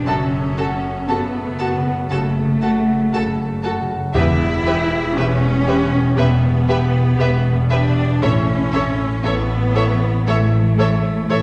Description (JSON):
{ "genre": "cinematic, emotional film score for orchestra", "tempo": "59 BPM", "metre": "4/4", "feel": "rubato", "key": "E dorian", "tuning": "A4 = 443 Hz", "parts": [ { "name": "bright baby grand piano", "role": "accompaniment", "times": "0.0-11.4 s", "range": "E2 to G4", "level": "-25 LUFS", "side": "equal", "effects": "none" }, { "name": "concert harp", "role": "arpeggios", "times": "0.0-11.4 s", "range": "E2 to B4", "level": "-26 LUFS", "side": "equal", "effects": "none" }, { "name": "rich studio cello section", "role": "bass", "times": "0.0-11.4 s", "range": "A3 to E4", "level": "-24 LUFS", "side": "equal", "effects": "none" }, { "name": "rich studio violin section", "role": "melody", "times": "0.1-11.4 s", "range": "E5 to A5", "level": "-34 LUFS", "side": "equal", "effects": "none" }, { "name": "rich studio violin section", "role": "second line", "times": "0.1-11.4 s", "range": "A4 to C#5", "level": "-29 LUFS", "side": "equal", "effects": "none" }, { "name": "rich studio viola section", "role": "accompaniment", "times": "0.1-11.4 s", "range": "F#4 to A4", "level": "-30 LUFS", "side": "equal", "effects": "none" }, { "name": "warm studio double bass section", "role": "bass", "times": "0.1-11.4 s", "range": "E1 to A1", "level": "-25 LUFS", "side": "equal", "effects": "none" }, { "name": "timpani", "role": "percussion", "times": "4.1-5.6 s", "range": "E2", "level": "-26 LUFS", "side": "equal", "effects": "none" } ], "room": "wet concert hall reverb, RT60 1.9 s", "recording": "heard from further back in the room, nothing above 10.9 kHz", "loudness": "-18 LUFS", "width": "mono", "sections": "0.0-11.4 A section", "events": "none", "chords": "0.1 F#m; 4.1 Em; 8.2 A" }